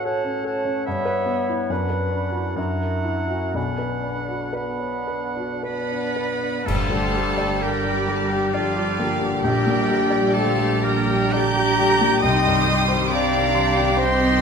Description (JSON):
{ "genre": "classical, romantic movement for piano and orchestra", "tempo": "52-74 BPM", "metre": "3/4", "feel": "rubato", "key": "B minor, G minor from 6.7 s", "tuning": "A4 = 435 Hz", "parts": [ { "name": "clear grand piano", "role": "melody", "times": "0.0-14.4 s", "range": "Bb1 to D6", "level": "-25 LUFS", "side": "left 2 dB", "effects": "none" }, { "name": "bright oboe", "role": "second line", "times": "0.0-14.4 s", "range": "F4 to G5", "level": "-29 LUFS", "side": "right 2 dB", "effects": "none" }, { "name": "concert flute", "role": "second line", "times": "0.0-14.4 s", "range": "A4 to B5", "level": "-29 LUFS", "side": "equal", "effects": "none" }, { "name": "mellow clarinet", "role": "second line", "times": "0.0-14.4 s", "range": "B3 to G5", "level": "-30 LUFS", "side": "left 2 dB", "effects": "none" }, { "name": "mellow bassoon", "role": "accompaniment", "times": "0.0-6.3 s", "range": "B3 to E4", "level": "-31 LUFS", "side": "right 3 dB", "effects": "none" }, { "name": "cymbal swell, clash cymbals and concert bass drum", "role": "percussion", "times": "3.6-8.5 s", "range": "none", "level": "-32 LUFS", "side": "right 1 dB", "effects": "none" }, { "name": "rich chamber violin section", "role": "melody", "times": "5.7-14.4 s", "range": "F5 to G6", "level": "-28 LUFS", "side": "left 1 dB", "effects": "none" }, { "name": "clear studio violin section", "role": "second line", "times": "5.7-14.4 s", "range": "D5 to D6", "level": "-31 LUFS", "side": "right 1 dB", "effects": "none" }, { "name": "clear studio cello section", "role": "bass", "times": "5.7-14.4 s", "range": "F3 to G4", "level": "-28 LUFS", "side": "right 3 dB", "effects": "none" }, { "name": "clear chamber viola section", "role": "accompaniment", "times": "6.7-14.4 s", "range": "C3 to G4", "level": "-29 LUFS", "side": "right 2 dB", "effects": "none" }, { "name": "mellow French horn section", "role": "sustained chords", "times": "6.7-14.4 s", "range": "G3 to D4", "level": "-28 LUFS", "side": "left 3 dB", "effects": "none" }, { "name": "dark trumpet section", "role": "stabs", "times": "6.7-14.4 s", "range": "G4", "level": "-28 LUFS", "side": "left 3 dB", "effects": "none" }, { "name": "warm studio double bass section", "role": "bass", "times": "6.7-14.4 s", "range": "G1 to C2", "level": "-28 LUFS", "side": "right 6 dB", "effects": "none" } ], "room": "moderate scoring stage reverb, RT60 1.5 s", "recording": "none", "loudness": "-19 LUFS", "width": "side -6 dB against mid", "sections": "0.0-6.7 A section; 6.7-14.4 B section", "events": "band accent 6.7-7.6", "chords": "0.0 F#m/A; 0.9 Em/G; 1.7 Bm/F#; 2.6 F#7; 3.6 Bm; 6.7 Gm; 9.4 Gm/Bb; 12.2 Cm" }